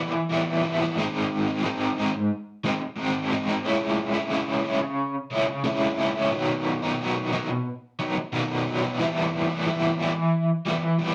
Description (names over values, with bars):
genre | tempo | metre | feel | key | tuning
rock | 90 BPM | 4/4 | straight | unclear | A4 = 440 Hz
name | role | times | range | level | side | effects
crunchy overdriven guitar | solo | 0.0-11.1 s | G#2 to E4 | -26 LUFS | equal | tremolo
room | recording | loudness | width
wet studio reverb, RT60 0.6 s | rough rehearsal-room recording, warm saturation | -26 LUFS | mono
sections
0.0-11.1 A section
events
none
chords
0.0 Em; 1.0 G#; 3.6 C#m; 6.3 B; 9.0 Em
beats
0.30 | 0.97 1.64 2.31 2.98 | 3.65 4.32 4.99 5.65 | 6.32 6.99 7.66 8.33 | 9.00 9.66 10.33 11.00